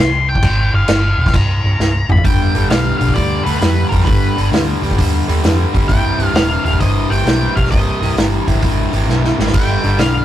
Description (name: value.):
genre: blues rock power trio and southern rock.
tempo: 132 BPM.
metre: 4/4.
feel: swing 67% on 8ths.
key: unclear.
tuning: A4 = 440 Hz.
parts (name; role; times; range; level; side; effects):
octave-fuzz lead guitar; melody; 0.0-10.2 s; Bb4 to C6; -20 LUFS; left 1 dB; distortion.
vintage muted fingered electric bass; bass; 0.0-10.2 s; C1 to F2; -17 LUFS; equal; none.
vintage drum kit; drums; 0.4-10.1 s; crash cymbal, hi-hat, kick drum, snare drum, toms; -16 LUFS; equal; none.
distorted electric guitar; riff; 2.2-10.2 s; C2 to G3; -18 LUFS; equal; distortion.
room: light reverb.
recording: rough rehearsal-room recording, tube saturation.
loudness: -12 LUFS.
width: side -12 dB against mid.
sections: 0.0-2.2 A section; 2.2-10.2 B section.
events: lead electric guitar solo 0.0-2.2; drum fill 1.8-2.2, 9.1-9.5.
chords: 0.0 C5; 2.2 G; 5.9 Cm; 9.5 G.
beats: | 0.43 0.88 1.34 1.79 | 2.25 2.70 3.16 3.61 | 4.07 4.52 4.98 5.43 | 5.89 6.35 6.80 7.26 | 7.71 8.17 8.63 9.08 | 9.54 9.99.